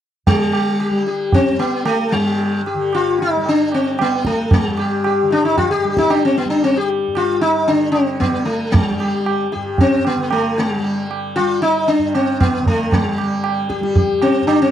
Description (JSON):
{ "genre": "indian classical, Hindustani", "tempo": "114 BPM", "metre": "4/4", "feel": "straight", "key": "G major", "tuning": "A4 = 443 Hz", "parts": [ { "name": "sitar", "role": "melody", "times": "0.3-14.7 s", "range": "G3 to G4", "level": "-16 LUFS", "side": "left 2 dB", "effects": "none" }, { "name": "tanpura", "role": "drone", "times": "0.3-14.7 s", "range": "G2 to G3", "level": "-27 LUFS", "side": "right 3 dB", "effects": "none" }, { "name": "tabla", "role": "percussion", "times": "0.3-14.7 s", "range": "none", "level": "-20 LUFS", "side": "right 3 dB", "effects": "none" } ], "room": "light reverb", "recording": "dry, close 1970s-style studio recording", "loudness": "-15 LUFS", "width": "side -10 dB against mid", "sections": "0.3-14.7 A section", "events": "none", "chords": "none" }